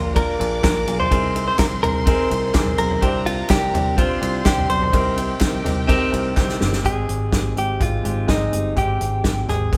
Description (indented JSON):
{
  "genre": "piano-driven pop",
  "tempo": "126 BPM",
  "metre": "4/4",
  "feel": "straight",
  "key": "unclear",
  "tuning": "A4 = 437 Hz",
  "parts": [
    { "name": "direct-recorded clean electric guitar", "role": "melody", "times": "0.0-9.8 s", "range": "Eb4 to C5", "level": "-25 LUFS", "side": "equal", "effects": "none" },
    { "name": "rich studio violin section", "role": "second line", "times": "0.0-6.8 s", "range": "G4 to D6", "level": "-34 LUFS", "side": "equal", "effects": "none" },
    { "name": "warm baby grand piano", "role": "accompaniment", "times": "0.0-9.8 s", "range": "Ab2 to D5", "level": "-27 LUFS", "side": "equal", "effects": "none" },
    { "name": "picked electric bass", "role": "bass", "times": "0.0-9.8 s", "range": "G1 to C2", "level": "-27 LUFS", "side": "equal", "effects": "none" },
    { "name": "natural country drum kit", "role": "drums", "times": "0.2-9.8 s", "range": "hi-hat, kick drum, ride cymbal, snare drum, toms", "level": "-24 LUFS", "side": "equal", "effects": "none" },
    { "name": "group handclap", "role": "percussion", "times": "0.6-6.5 s", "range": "none", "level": "-36 LUFS", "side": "equal", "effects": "none" }
  ],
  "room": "moderate studio reverb, RT60 0.9 s",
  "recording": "band playing live in one room",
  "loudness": "-20 LUFS",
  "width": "mono",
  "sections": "0.0-6.8 A section; 6.8-9.8 B section",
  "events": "drum fill 6.4-6.8",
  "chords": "0.0 Bb; 1.1 Abadd9/C; 3.0 Csus2; 4.9 Cm7; 6.8 Abmaj7"
}